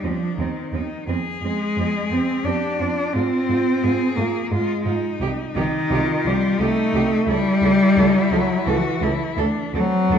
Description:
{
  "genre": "classical, lyrical piece for cello ensemble",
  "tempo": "87 BPM",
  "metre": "3/4",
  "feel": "rubato",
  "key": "unclear",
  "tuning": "A4 = 440 Hz",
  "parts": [
    { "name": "clear cello", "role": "melody", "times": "0.0-10.2 s", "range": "C4 to Ab4", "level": "-28 LUFS", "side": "left 5 dB", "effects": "none" },
    { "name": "warm cello", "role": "second line", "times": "0.0-10.2 s", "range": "C4 to A4", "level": "-28 LUFS", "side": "right 7 dB", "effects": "none" },
    { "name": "clear cello", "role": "accompaniment", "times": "0.0-10.2 s", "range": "Eb3 to D4", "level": "-20 LUFS", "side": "left 1 dB", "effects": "none" },
    { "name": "warm cello", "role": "bass", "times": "0.0-10.2 s", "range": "C2 to Ab2", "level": "-26 LUFS", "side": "right 2 dB", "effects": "none" }
  ],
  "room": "moderate scoring stage reverb, RT60 1.7 s",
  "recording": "dark, warm production",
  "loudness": "-18 LUFS",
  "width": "side -8 dB against mid",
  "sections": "0.0-10.2 A section",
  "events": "none",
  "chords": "0.0 Cm/Eb; 1.1 Fm; 3.1 Fm/Ab; 5.2 Cm; 7.3 A7/C#; 9.4 D"
}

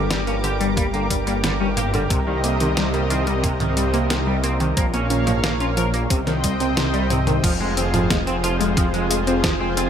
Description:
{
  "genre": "synthwave",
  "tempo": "90 BPM",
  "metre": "4/4",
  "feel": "straight",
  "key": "F minor",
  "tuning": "A4 = 440 Hz",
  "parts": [
    { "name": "lush unison pad", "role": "sustained chords", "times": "0.0-9.9 s", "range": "F3 to D6", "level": "-25 LUFS", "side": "equal", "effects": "chorus" },
    { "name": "analog pluck", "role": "arpeggios", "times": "0.0-9.9 s", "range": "D3 to Db4", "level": "-25 LUFS", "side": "left 1 dB", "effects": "chorus, digital delay" },
    { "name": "wide detuned saw bass", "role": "bass", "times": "0.0-9.9 s", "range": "F1 to C2", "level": "-23 LUFS", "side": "equal", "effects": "chorus, tube saturation, sidechain pumping" },
    { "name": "semi-hollow electric guitar", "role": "riff", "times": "0.1-9.9 s", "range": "C3 to Bb4", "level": "-28 LUFS", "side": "right 1 dB", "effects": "ensemble chorus, digital delay" },
    { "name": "detuned 8-bit digital drum machine", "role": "drums", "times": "0.1-9.9 s", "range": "crash cymbal, hi-hat, snare drum, toms", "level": "-25 LUFS", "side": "equal", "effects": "overdrive" },
    { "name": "electronic kick drum", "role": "drums", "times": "0.8-9.6 s", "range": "none", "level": "-23 LUFS", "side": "equal", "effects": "overdrive" }
  ],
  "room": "light reverb",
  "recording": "none",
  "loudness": "-18 LUFS",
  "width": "side -8 dB against mid",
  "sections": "0.0-7.4 A section; 7.4-9.9 B section",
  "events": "drum fill 7.1-7.4",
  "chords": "0.0 Gm; 2.1 Cm7; 4.8 Bbm; 6.1 Cm; 7.4 Fm"
}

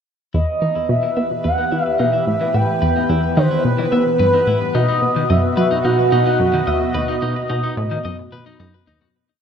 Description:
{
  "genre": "ambient, sequencer-driven space music",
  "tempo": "109 BPM",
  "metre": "4/4",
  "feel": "straight",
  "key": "E harmonic minor",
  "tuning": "A4 = 439 Hz",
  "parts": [
    { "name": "expressive synth lead", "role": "melody", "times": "0.3-8.6 s", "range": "B4 to G5", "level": "-19 LUFS", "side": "equal", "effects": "lush chorus, ping-pong delay" },
    { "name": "lush unison pad", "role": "sustained chords", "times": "0.3-9.2 s", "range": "B2 to D#5", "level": "-22 LUFS", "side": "right 1 dB", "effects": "chorus, phaser" },
    { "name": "twelve-string electric guitar", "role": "arpeggios", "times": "0.3-9.1 s", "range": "D#3 to E5", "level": "-29 LUFS", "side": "left 3 dB", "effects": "auto-pan, ping-pong delay" },
    { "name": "analog pluck", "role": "riff", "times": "0.3-9.0 s", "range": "D#2 to B3", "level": "-20 LUFS", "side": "equal", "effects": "chorus, ping-pong delay" },
    { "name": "bubbling stepped-filter texture", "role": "texture", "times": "0.5-9.2 s", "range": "B4", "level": "-30 LUFS", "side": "equal", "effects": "chorus, built-in reverb" }
  ],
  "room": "wet plate reverb, RT60 3.1 s",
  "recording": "dreamy mix soaked in reverb",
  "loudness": "-15 LUFS",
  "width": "side -7 dB against mid",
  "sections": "0.3-9.2 A section",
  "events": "fade-in on clean electric guitar 0.3-9.2; fade-in on analog synth pad 0.3-9.2; filter sweep on synth arpeggio sound 0.3-9.2; fade-out 6.2-9.2",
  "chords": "0.3 Emadd9; 4.7 B"
}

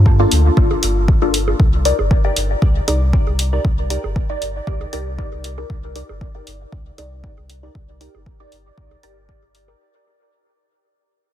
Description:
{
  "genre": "dub techno",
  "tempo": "117 BPM",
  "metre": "4/4",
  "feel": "swing 54% on 16ths",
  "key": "unclear",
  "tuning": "A4 = 440 Hz",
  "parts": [
    { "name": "soft dub sub bass", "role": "bass", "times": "0.0-9.7 s", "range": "G1 to G2", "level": "-18 LUFS", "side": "equal", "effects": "sidechain pumping" },
    { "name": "electronic kick drum", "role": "drums", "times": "0.1-9.4 s", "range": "none", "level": "-16 LUFS", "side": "equal", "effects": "none" },
    { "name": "filtered dub chord stab", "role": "stabs", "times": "0.2-9.8 s", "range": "Bb3 to D5", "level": "-22 LUFS", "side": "left 2 dB", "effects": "phaser, vintage 12-bit sampler grit, sidechain pumping, dub echo" },
    { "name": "electronic hi-hat", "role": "drums", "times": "0.3-9.7 s", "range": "none", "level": "-22 LUFS", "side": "equal", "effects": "none" },
    { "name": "bongos", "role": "percussion", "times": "0.7-9.8 s", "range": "none", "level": "-30 LUFS", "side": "right 8 dB", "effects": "sidechain pumping on perc, dub echo" }
  ],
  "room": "light reverb",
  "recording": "dense, heavily limited modern master",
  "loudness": "-15 LUFS",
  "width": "side -12 dB against mid",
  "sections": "0.0-9.8 A section",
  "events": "fade-out 0.0-9.8",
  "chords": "0.0 Gm7; 1.6 Cm7"
}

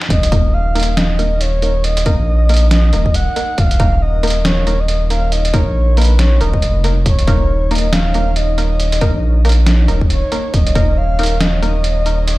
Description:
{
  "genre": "deep dubstep",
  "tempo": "138 BPM",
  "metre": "4/4",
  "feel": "swing 60% on 16ths, half-time",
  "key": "unclear",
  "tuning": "A4 = 436 Hz",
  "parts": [
    { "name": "deep dark ambient pad", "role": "sustained chords", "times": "0.0-12.4 s", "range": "F3 to Db5", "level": "-29 LUFS", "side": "right 2 dB", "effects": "chorus, built-in reverb" },
    { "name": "trip hop sampler-style drum kit", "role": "drums", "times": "0.0-12.4 s", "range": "hi-hat, snare drum", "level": "-21 LUFS", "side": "equal", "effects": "overdrive, high-pass filter on hats, high-pass filter on snare, high-pass filter on room" },
    { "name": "breathy flute-like synth lead", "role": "melody", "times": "0.1-12.4 s", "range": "Cb5 to Gb5", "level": "-21 LUFS", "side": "equal", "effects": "chorus, tremolo, dub echo" },
    { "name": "saturated sub bass", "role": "bass", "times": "0.1-12.4 s", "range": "Eb1 to Bb1", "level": "-14 LUFS", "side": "equal", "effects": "tube saturation" },
    { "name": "electronic kick drum", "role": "drums", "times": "0.1-10.9 s", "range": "none", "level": "-15 LUFS", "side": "equal", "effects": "none" },
    { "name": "filtered dub chord stab", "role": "stabs", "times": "0.3-12.2 s", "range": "Bb3 to Bb4", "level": "-24 LUFS", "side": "left 2 dB", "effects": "chorus, dub echo" }
  ],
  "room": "little or no reverb",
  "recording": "played on a big sound system in a bare room, large studio reverb",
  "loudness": "-12 LUFS",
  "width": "side -19 dB against mid",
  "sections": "0.1-12.4 A section",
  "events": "drop 0.1-12.4",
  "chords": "0.1 Eb5"
}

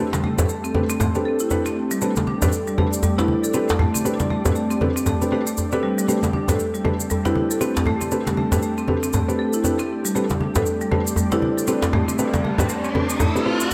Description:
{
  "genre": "afro house",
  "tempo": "118 BPM",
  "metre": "4/4",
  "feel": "swing 59% on 16ths",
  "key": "A minor",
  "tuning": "A4 = 441 Hz",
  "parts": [
    { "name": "ethereal airy pad", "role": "sustained chords", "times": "0.0-13.7 s", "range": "A3 to D5", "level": "-30 LUFS", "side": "equal", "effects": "ensemble chorus, built-in reverb" },
    { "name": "felt-muted upright piano", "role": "stabs", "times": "0.0-13.5 s", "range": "C4 to B4", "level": "-28 LUFS", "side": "equal", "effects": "delay" },
    { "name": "marimba with medium hard mallets", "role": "arpeggios", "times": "0.1-13.7 s", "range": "G3 to A4", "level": "-27 LUFS", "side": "equal", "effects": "delay" },
    { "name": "cabasa", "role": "percussion", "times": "0.1-13.7 s", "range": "none", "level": "-33 LUFS", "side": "equal", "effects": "none" },
    { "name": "congas", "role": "percussion", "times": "0.1-13.3 s", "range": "none", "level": "-28 LUFS", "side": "equal", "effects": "none" },
    { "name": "djembe", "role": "percussion", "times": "0.1-13.7 s", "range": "none", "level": "-27 LUFS", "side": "equal", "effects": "none" },
    { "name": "electronic hi-hat", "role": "drums", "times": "0.2-13.6 s", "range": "none", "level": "barely audible", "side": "none", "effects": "none" },
    { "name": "riser", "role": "sound effects", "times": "11.8-13.7 s", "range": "none", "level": "-30 LUFS", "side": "equal", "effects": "none" }
  ],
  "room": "light reverb, studio reverb",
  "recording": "none",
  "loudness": "-21 LUFS",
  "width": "mono",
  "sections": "0.0-13.7 A section",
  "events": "filter sweep on ambient pad 0.0-13.7; riser 11.8-13.7",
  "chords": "0.0 Am11"
}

